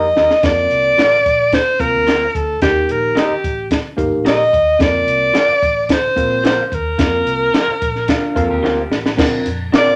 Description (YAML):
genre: uptempo 1960s-style soul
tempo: 110 BPM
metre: 4/4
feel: straight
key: unclear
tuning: A4 = 438 Hz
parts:
  - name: warm alto saxophone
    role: melody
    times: 0.0-10.0 s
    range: G4 to Eb5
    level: -17 LUFS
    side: equal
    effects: none
  - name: tine electric piano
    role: accompaniment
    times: 0.0-10.0 s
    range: Bb2 to Bb4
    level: -23 LUFS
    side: equal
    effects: none
  - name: electric guitar through a small old amp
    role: stabs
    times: 0.0-9.9 s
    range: D4 to F5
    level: -24 LUFS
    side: equal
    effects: none
  - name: vintage muted fingered electric bass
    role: bass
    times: 0.0-9.9 s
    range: G1 to F2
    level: -29 LUFS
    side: equal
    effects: none
  - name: compact cocktail drum kit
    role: drums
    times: 0.2-9.9 s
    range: crash cymbal, hi-hat, kick drum, snare drum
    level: -20 LUFS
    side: equal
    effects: none
  - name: electric guitar through a small old amp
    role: riff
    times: 8.1-9.2 s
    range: D4 to Bb4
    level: -25 LUFS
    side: equal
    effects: none
  - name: glockenspiel with rubber mallets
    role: second line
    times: 9.8-10.0 s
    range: D6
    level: -27 LUFS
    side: equal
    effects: none
room: moderate studio reverb, RT60 0.5 s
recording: none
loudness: -15 LUFS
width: mono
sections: 0.4-9.2 A section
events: drum fill 0.0-0.4, 8.6-9.2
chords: 0.4 Fsus4; 2.6 Eb; 4.8 Fsus4; 9.2 Bbadd9